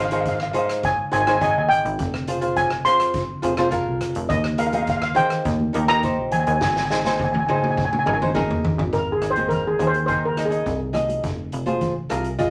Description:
calypso; 104 BPM; 4/4; straight; Ab major; A4 = 440 Hz
steel pan; melody; 0.0-11.9 s; Ab4 to C6; -24 LUFS; equal
flamenco guitar; accompaniment; 0.0-12.5 s; Eb4 to Eb5; -26 LUFS; equal
plucky analog bass; bass; 0.0-12.5 s; F1 to Eb3; -30 LUFS; equal
street-band drum kit; drums; 0.1-12.5 s; hi-hat, kick drum, rim click, snare drum, toms; -31 LUFS; equal
congas; percussion; 4.7-11.9 s; -31 LUFS; equal
moderate studio ambience, RT60 0.5 s; -22 LUFS; mono
0.0-8.9 A section; 8.9-12.5 B section
drum fill 6.6-8.9; steel pan solo 8.9-12.5
0.0 Ab; 2.0 Fmadd9; 4.3 Ebsus4; 5.5 Eb; 6.6 Abadd9; 11.2 Fm
0.26 0.84 1.42 | 1.99 2.57 3.15 3.73 | 4.30 4.88 5.46 6.03 | 6.61 7.19 7.77 8.34 | 8.92 9.50 10.08 10.66 | 11.24 11.82 12.40

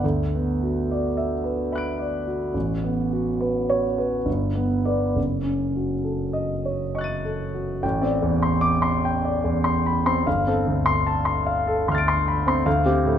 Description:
classical, impressionist solo piano; 65-78 BPM; 3/4; rubato; F# minor, A minor from 7.8 s; A4 = 440 Hz
clear concert grand piano; solo; 0.0-13.2 s; F#1 to D#7; -21 LUFS; equal
moderate recital hall reverb, RT60 1.3 s; -21 LUFS; side -9 dB against mid
0.0-7.8 A section; 7.8-13.2 B section
0.0 D69; 2.5 A69; 4.3 G; 5.2 F#m6; 7.8 Am11; 10.3 G9sus4; 12.7 Dm7
| 0.03 0.88 1.71 | 2.54 3.39 4.26 | 5.17 6.06 6.95 | 7.83 8.65 9.46 | 10.26 11.07 11.88 | 12.66

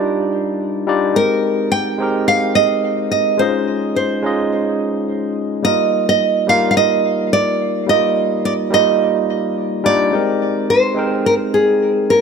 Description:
chillout; 107 BPM; 4/4; swing 56% on 16ths; Eb major; A4 = 440 Hz
barky tine electric piano; accompaniment; 0.0-12.2 s; G3 to G5; -18 LUFS; moving between left 6 dB and right 3 dB; overdrive, auto-pan, tape echo
nylon-string guitar; melody; 1.2-12.2 s; Ab4 to G5; -16 LUFS; right 2 dB; tape echo
light reverb, studio reverb; -14 LUFS; side -6 dB against mid
0.0-12.2 A section
0.0 Ebmaj7; 1.2 Abmaj9; 3.4 Dbmaj7; 5.6 Ebmaj7; 10.1 Abmaj9
0.04 0.60 | 1.16 1.72 2.28 2.84 | 3.40 3.96 4.52 5.08 | 5.64 6.20 6.76 7.33 | 7.88 8.45 9.01 9.57 | 10.13 10.69 11.25 11.81

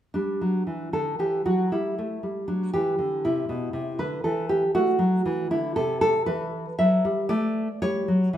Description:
classical, baroque-style dance for nylon-string guitar; 117 BPM; 3/4; rubato; G major; A4 = 440 Hz
nylon-string guitar; solo; 0.1-8.4 s; B2 to E5; -22 LUFS; equal
moderate recital hall reverb, RT60 1.3 s; minimal, uncompressed stereo recording; -23 LUFS; side -11 dB against mid
0.2-8.4 A section
0.2 G5; 3.3 Am11/B; 4.8 Am; 6.3 Em7; 7.8 Em69 (rootless)
| 0.16 0.68 1.20 | 1.72 2.23 2.75 | 3.26 3.76 4.27 | 4.78 5.28 5.78 | 6.28 6.80 7.31 | 7.82 8.34

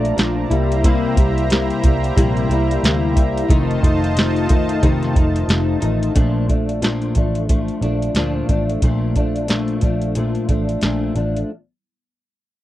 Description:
indie pop, bedroom pop; 90 BPM; 4/4; swing 60% on 16ths; Bb major; A4 = 441 Hz
fingerpicked plugged-in steel-string acoustic guitar; accompaniment; 0.0-11.5 s; F2 to E4; -20 LUFS; left 2 dB; ensemble chorus, warbly pitch drift
warm analog pad; sustained chords; 0.0-6.1 s; F4 to Bb5; -26 LUFS; right 1 dB; chorus
vintage muted picked electric bass; bass; 0.0-11.4 s; F1 to D2; -21 LUFS; equal
soft vintage rhythm box; drums; 0.0-11.5 s; hi-hat, kick drum, snare drum; -17 LUFS; equal
little or no reverb; dry, close 1970s-style studio recording; -15 LUFS; side -14 dB against mid
0.0-6.2 A section; 6.2-11.5 B section
0.0 Bbmaj7; 0.5 C7; 3.5 F7; 6.2 Bbmaj7
0.17 | 0.84 1.50 2.17 2.83 | 3.50 4.16 4.82 5.49 | 6.15 6.82 7.49 8.15 | 8.82 9.48 10.15 10.82

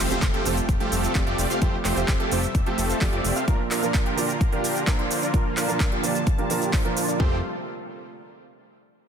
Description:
EDM, festival progressive house; 129 BPM; 4/4; straight; F major; A4 = 440 Hz
warm concert grand piano; accompaniment; 0.0-7.4 s; Bb2 to D5; -30 LUFS; right 6 dB; sidechain pumping, tape echo
lush unison pad; sustained chords; 0.0-7.4 s; C3 to A5; -32 LUFS; left 1 dB; chorus, sidechain pumping
supersaw chords; riff; 0.0-7.4 s; A3 to F5; -28 LUFS; right 1 dB; sidechain pumping, low-pass filter, tape echo
fat analog bass; bass; 0.0-3.3, 7.2-7.4 s; F1 to F2; -29 LUFS; left 1 dB; sidechain pumping
big-room dance drum kit; drums; 0.0-7.2 s; cabasa, handclaps, hi-hat; -29 LUFS; right 1 dB; overdrive
impact; sound effects; 0.0-1.6 s; -37 LUFS; left 1 dB
electronic kick drum; drums; 0.2-7.3 s; -23 LUFS; equal
light reverb; dense, heavily limited modern master; -21 LUFS; side -7 dB against mid
0.0-7.2 A section; 7.2-9.1 B section
impact 0.0-1.6; filter sweep on supersaw synth 0.0-7.2
0.0 Fadd9; 3.5 Bb; 7.2 Fadd9
0.22 0.69 1.15 | 1.62 2.08 2.55 3.01 | 3.48 3.94 4.41 4.87 | 5.34 5.80 6.27 6.73 | 7.20

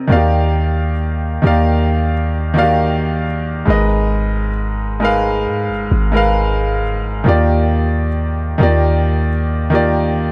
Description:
contemporary R&B; 67 BPM; 4/4; straight; Eb major; A4 = 440 Hz
clear grand piano; accompaniment; 0.0-10.3 s; Ab2 to F5; -18 LUFS; equal
warm 808-style bass; bass; 0.1-10.3 s; G1 to Ab2; -20 LUFS; equal
light reverb, small room ambience; -16 LUFS; mono
0.1-10.3 A section
0.1 Ebmaj9; 3.7 Abmadd9; 7.3 Ebmaj9
| 0.09 0.99 1.88 2.78 | 3.67 4.57 5.46 6.36 | 7.25 8.15 9.05 9.94

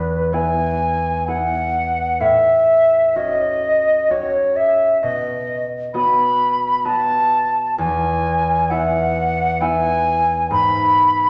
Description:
classical, romantic duo for flute and harp; 65 BPM; 3/4; rubato; E major; A4 = 439 Hz
silver concert flute; melody; 0.0-11.3 s; B4 to B5; -18 LUFS; equal
concert harp; accompaniment; 0.0-11.3 s; E2 to E5; -26 LUFS; equal
wet recital hall reverb, RT60 1.4 s; faint mains hum; -18 LUFS; mono
0.0-11.3 A section
0.0 E; 2.2 A6; 5.0 B; 7.8 E; 10.5 E/G#
0.34 1.28 | 2.21 3.16 4.11 | 5.03 5.95 6.85 | 7.79 8.71 9.61 | 10.51

